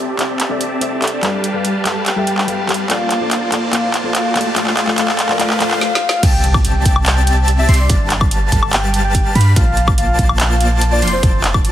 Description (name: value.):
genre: future bass.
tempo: 144 BPM.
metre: 4/4.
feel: half-time.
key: C major.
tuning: A4 = 440 Hz.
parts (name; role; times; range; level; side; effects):
soft octave-layered synth lead; melody; 0.0-11.5 s; C5 to A5; -22 LUFS; left 2 dB; chorus, sidechain pumping, dub echo.
soft round pluck; accompaniment; 0.0-5.8 s; G3 to F5; -22 LUFS; left 2 dB; lush chorus, sidechain pumping.
supersaw chords; riff; 0.0-11.7 s; F3 to C6; -21 LUFS; equal; sidechain pumping, low-pass filter.
riser and impact; sound effects; 2.1-7.9 s; none; -28 LUFS; right 1 dB; none.
trap drum kit; drums; 0.2-11.7 s; crash cymbal, handclaps, hi-hat, snare drum, woodblock; -19 LUFS; equal; high-pass filter on snare, studio ambience, high-pass filter on hats, high-pass filter on cymbals, high-pass filter on perc.
airy dreamy lead; arpeggios; 6.2-11.7 s; A5 to C6; -23 LUFS; equal; chorus, sidechain pumping, ping-pong delay.
warm 808-style bass; bass; 6.2-11.7 s; F1 to G2; -15 LUFS; equal; sidechain pumping.
electronic kick drum; drums; 6.2-11.6 s; none; -16 LUFS; equal; studio ambience.
room: moderate lush hall reverb, RT60 2.2 s.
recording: heavily compressed radio sound.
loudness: -13 LUFS.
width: side -12 dB against mid.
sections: 0.0-6.2 A section; 6.2-11.7 B section.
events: build-up 0.0-6.2; drum fill 0.0-5.8, 5.8-6.2; filter sweep on supersaw synth 0.0-6.2; filter sweep on soft synth lead 0.0-6.2; riser 2.1-5.8; drop 6.2-11.7; impact 6.2-7.9.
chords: 0.0 C6; 1.2 G7; 2.9 Bbmaj7; 4.4 F6; 6.2 C6; 7.9 G7; 9.6 Bbmaj7; 11.0 F69.